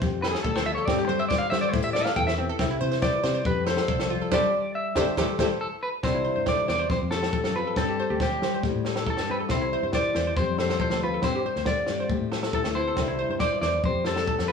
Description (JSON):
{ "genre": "highlife guitar band", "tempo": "139 BPM", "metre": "4/4", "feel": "straight", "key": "C major", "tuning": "A4 = 441 Hz", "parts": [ { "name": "flamenco guitar", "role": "accompaniment", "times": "0.0-14.5 s", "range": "E2 to G4", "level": "-31 LUFS", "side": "left 8 dB", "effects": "none" }, { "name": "fingered electric bass", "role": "bass", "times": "0.0-14.5 s", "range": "G1 to G3", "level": "-31 LUFS", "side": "left 1 dB", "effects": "none" }, { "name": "compact cocktail drum kit", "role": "drums", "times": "0.0-14.5 s", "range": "kick drum, snare drum", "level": "-29 LUFS", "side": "equal", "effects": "none" }, { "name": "electric guitar at the edge of break-up", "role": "melody", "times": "0.2-14.5 s", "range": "G4 to G5", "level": "-27 LUFS", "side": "left 1 dB", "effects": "none" }, { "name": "hollow square pluck", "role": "arpeggios", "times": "0.2-14.5 s", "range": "C4 to C5", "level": "-31 LUFS", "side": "right 3 dB", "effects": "chorus" } ], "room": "moderate stone room reverb, RT60 1.3 s", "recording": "band playing live in one room, studio reverb", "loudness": "-23 LUFS", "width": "side -6 dB against mid", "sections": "0.0-6.0 A section; 6.0-14.5 B section", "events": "clean electric guitar solo 0.0-6.0; band accent 4.3-6.0", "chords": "0.0 Fadd9; 0.9 Gsus4; 1.7 Am7; 2.6 Cadd9; 3.5 Fadd9; 4.3 Gsus4; 5.2 Am7; 6.0 Cadd9; 6.9 Fadd9; 7.8 Gsus4; 8.6 Am7; 9.5 Cadd9; 10.4 Fadd9; 11.2 Gsus4; 12.1 Am7; 13.0 Cadd9; 13.8 Fadd9" }